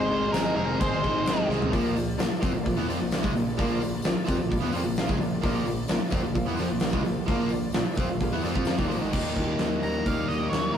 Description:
classic rock; 130 BPM; 4/4; straight; Bb mixolydian; A4 = 440 Hz
octave-fuzz lead guitar; melody; 0.0-1.5, 9.8-10.8 s; Bb4 to Bb5; -30 LUFS; equal; distortion
honky-tonk upright piano; accompaniment; 0.0-9.1 s; Eb4 to F5; -35 LUFS; left 2 dB
picked steel-string acoustic guitar; accompaniment; 0.0-1.7, 9.1-10.8 s; Ab2 to Ab4; -33 LUFS; equal
distorted electric guitar; riff; 0.0-10.8 s; Ab2 to Ab4; -32 LUFS; right 5 dB; overdrive
overdriven electric guitar; riff; 0.0-10.8 s; Ab2 to Ab4; -32 LUFS; left 5 dB
overdriven semi-hollow guitar; riff; 0.0-9.1 s; Ab2 to F4; -34 LUFS; equal
growling picked electric bass; bass; 0.0-10.8 s; F1 to F2; -33 LUFS; equal; overdrive
big rock drum kit; drums; 0.3-10.6 s; crash cymbal, hi-hat, kick drum, snare drum, toms; -28 LUFS; equal
tambourine; percussion; 0.3-9.1 s; -48 LUFS; left 5 dB
moderate stone room reverb, RT60 1.1 s; rough rehearsal-room recording, warm saturation; -24 LUFS; side -8 dB against mid
0.0-1.7 A section; 1.7-9.1 B section; 9.1-10.8 C section
drum fill 1.5; lead electric guitar solo 9.1-10.8
0.0 Ab; 1.7 Bb; 9.1 Ebadd9
0.35 0.81 1.27 | 1.73 2.20 2.66 3.12 | 3.58 4.04 4.51 4.97 | 5.43 5.89 6.35 6.82 | 7.28 7.74 8.20 8.67 | 9.13 9.60 10.06 10.52

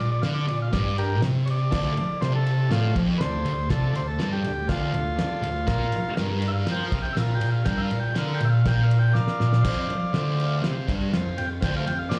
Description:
garage rock duo or trio; 121 BPM; 4/4; straight; A4 = 440 Hz
combo organ; melody; 0.0-12.2 s; F4 to G5; -32 LUFS; equal; slapback echo
thick fuzz guitar; riff; 0.0-12.2 s; D2 to F3; -26 LUFS; equal; distortion, slapback echo
cloth-damped thuddy drum kit; drums; 0.2-12.2 s; crash cymbal, kick drum, ride cymbal, snare drum, splash cymbal; -32 LUFS; equal
combo organ; sustained chords; 1.7-12.2 s; F4 to F5; -38 LUFS; equal; spring reverb
moderate club reverb, RT60 0.6 s; live gig heard through the venue's PA, club reverb; -24 LUFS; mono
0.0-12.2 A section
transistor combo organ solo 0.0-12.2; drum fill 9.2-9.6
0.0 Bb5; 1.7 Dm; 5.7 Bb5; 9.6 F5
0.23 0.73 1.23 | 1.72 2.22 2.71 3.21 | 3.70 4.20 4.69 5.19 | 5.68 6.18 6.67 7.17 | 7.67 8.16 8.66 9.15 | 9.65 10.14 10.64 11.13 | 11.62 12.12

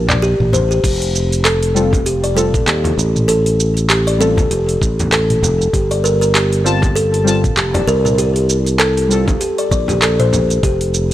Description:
organic downtempo; 98 BPM; 4/4; swing 57% on 16ths; A4 = 441 Hz
deep mellow chord stab; accompaniment; 0.0-10.6 s; G3 to A5; -21 LUFS; left 2 dB; chorus, sidechain pumping, tape echo
buzzing kalimba; arpeggios; 0.0-10.7 s; G4 to D5; -17 LUFS; equal; tape echo
sustaining fretless electric bass; bass; 0.0-11.1 s; F1 to Eb2; -17 LUFS; equal; sidechain pumping
afro-pop drum kit; drums; 0.1-11.1 s; crash cymbal, handclaps, hi-hat, shaker, toms; -19 LUFS; right 1 dB
frame drum; percussion; 0.1-10.5 s; -23 LUFS; left 1 dB
electronic kick drum; drums; 0.8-10.8 s; -17 LUFS; equal
little or no reverb; dry, gritty hardware recording; -12 LUFS; side -13 dB against mid
0.8-11.1 A section
break 0.0-0.8
0.0 Gm7; 0.8 Fadd9; 5.7 Gm7; 10.6 Fsus2
0.22 | 0.84 1.45 2.06 2.67 | 3.29 3.90 4.51 5.12 | 5.73 6.35 6.96 7.57 | 8.18 8.79 9.41 10.02 | 10.63

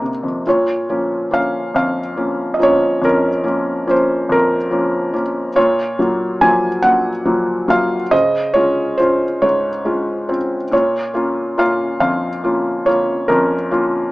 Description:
classical, lyrical solo piano; 47 BPM (dotted quarters); 6/8; rubato; Bb minor; A4 = 441 Hz
felt-muted upright piano; solo; 0.0-14.1 s; C2 to Ab5; -14 LUFS; equal
light reverb; small speaker sound; -14 LUFS; side -19 dB against mid
0.5-14.1 A section
0.5 Bbm; 5.6 Gbmaj7/Bb; 8.1 Dbmaj7; 10.7 Bbm
| 0.45 1.75 | 3.03 4.30 | 5.57 6.83 | 8.11 9.41 | 10.72 12.02 | 13.30

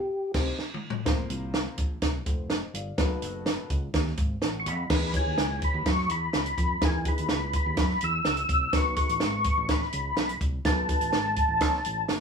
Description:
uptempo 1960s-style soul; 125 BPM; 4/4; straight; A4 = 439 Hz
percussive tonewheel organ; melody; 0.0-0.3, 4.6-12.1 s; G4 to E6; -28 LUFS; left 1 dB; chorus vibrato, slow rotary speaker
dark upright piano; accompaniment; 0.3-11.6 s; Bb3 to A5; -36 LUFS; left 4 dB
fingered electric bass; bass; 0.3-12.2 s; F1 to F#2; -33 LUFS; right 1 dB
compact cocktail drum kit; drums; 0.3-12.2 s; crash cymbal, hi-hat, kick drum, snare drum, toms; -27 LUFS; right 1 dB
moderate studio ambience, RT60 0.5 s; band playing live in one room; -24 LUFS; side -6 dB against mid
0.0-1.1 A section; 1.1-4.9 B section; 4.9-12.2 C section
band accent 0.0-1.1; tonewheel organ solo 0.0-1.1; drum fill 0.6-1.1
0.1 Cm; 0.6 N.C.; 1.1 Fsus4; 3.0 B7; 4.9 Emaj7; 8.7 B7
0.10 0.58 | 1.06 1.54 2.02 2.50 | 2.98 3.46 3.94 4.42 | 4.90 5.38 5.86 6.34 | 6.82 7.29 7.77 8.25 | 8.73 9.21 9.69 10.17 | 10.65 11.13 11.61 12.09

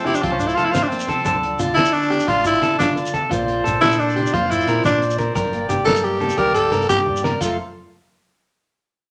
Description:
highlife guitar band; 117 BPM (dotted quarters); 12/8; straight; F major; A4 = 439 Hz
growling tenor saxophone; melody; 0.0-7.0 s; C4 to Bb4; -21 LUFS; equal
nylon-string guitar; accompaniment; 0.0-7.6 s; F2 to A4; -32 LUFS; equal
accordion; sustained chords; 0.0-7.6 s; A4 to A5; -31 LUFS; equal
clean electric guitar; arpeggios; 0.0-7.6 s; F4 to D5; -25 LUFS; equal
fingered electric bass; bass; 0.0-7.6 s; F1 to F3; -32 LUFS; equal
cloth-damped thuddy drum kit; drums; 0.1-7.5 s; crash cymbal, hi-hat, kick drum, snare drum, toms; -30 LUFS; equal
congas; percussion; 0.1-7.6 s; -33 LUFS; equal
shekere; percussion; 0.1-7.6 s; -35 LUFS; equal
wet studio reverb, RT60 0.8 s; -19 LUFS; mono
0.0-7.4 A section; 7.4-9.1 B section
tenor saxophone solo 0.0-7.4; drum fill 6.9-7.4
0.0 F; 1.3 Dm; 3.3 Bbadd9; 5.4 Gm; 7.4 F
0.23 0.74 | 1.26 1.77 2.28 2.80 | 3.31 3.82 4.33 4.85 | 5.36 5.87 6.38 6.89 | 7.40

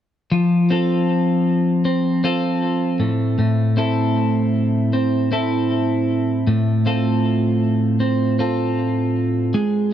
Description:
pop; 78 BPM; 4/4; straight; F major; A4 = 440 Hz
twelve-string electric guitar; solo; 0.3-9.9 s; A2 to A4; -16 LUFS; equal; tape echo
light reverb; dark, warm production; -17 LUFS; side -10 dB against mid
0.3-9.9 A section
0.3 F; 3.0 Am
| 0.31 1.08 1.85 2.62 | 3.39 4.16 4.93 5.70 | 6.46 7.24 8.00 8.77 | 9.54

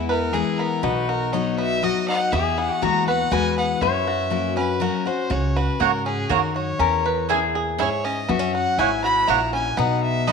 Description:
bluegrass; 121 BPM; 3/4; straight; A4 = 437 Hz
bluegrass banjo; melody; 0.0-10.3 s; B3 to B4; -28 LUFS; right 4 dB
lap resonator guitar; second line; 0.0-10.3 s; D#4 to C#5; -26 LUFS; left 9 dB
picked steel-string acoustic guitar; accompaniment; 0.0-10.3 s; E2 to F#4; -26 LUFS; left 9 dB
upright bass; bass; 0.0-10.3 s; G#1 to G#2; -28 LUFS; right 2 dB
rich fiddle; melody; 0.1-10.3 s; G#4 to B5; -24 LUFS; equal
mandolin; stabs; 5.8-10.3 s; A#3 to B5; -23 LUFS; right 13 dB
moderate echo chamber reverb, RT60 1.7 s, small room ambience; 1960s-style stereo with parts hard left and right; -19 LUFS; side -5 dB against mid
0.0-10.3 A section
0.0 E; 0.8 B; 2.3 Eadd9; 3.8 F#; 6.8 C#m/E; 8.3 F#7; 9.8 B
0.34 | 0.84 1.33 1.83 | 2.33 2.82 3.32 | 3.82 4.32 4.81 | 5.31 5.81 6.30 | 6.80 7.30 7.79 | 8.29 8.79 9.28 | 9.78 10.28

